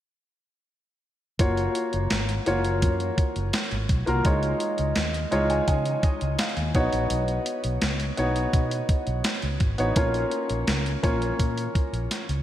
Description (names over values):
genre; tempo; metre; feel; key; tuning
1980s-style pop; 84 BPM; 4/4; straight; F# major; A4 = 440 Hz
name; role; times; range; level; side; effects
warm baby grand piano; accompaniment; 1.4-12.4 s; G#3 to A#5; -26 LUFS; equal; shimmer reverb
fretless electric bass; bass; 1.4-12.4 s; F#1 to C#3; -28 LUFS; equal; lush chorus
gated 80s digital drum machine; drums; 1.4-12.4 s; hi-hat, kick drum, snare drum; -26 LUFS; equal; gated reverb, gated reverb snare
room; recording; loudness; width
wet lush hall reverb, RT60 2.6 s; bright 1980s-style digital production; -22 LUFS; side -12 dB against mid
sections
1.4-12.4 A section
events
grand piano fill 5.0-7.1; drum fill 12.1-12.4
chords
1.4 F#maj7; 4.3 C#add9; 6.8 Badd9; 10.0 A#m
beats
| 1.39 2.11 2.82 3.54 | 4.25 4.96 5.68 6.39 | 7.11 7.82 8.54 9.25 | 9.96 10.68 11.39 12.11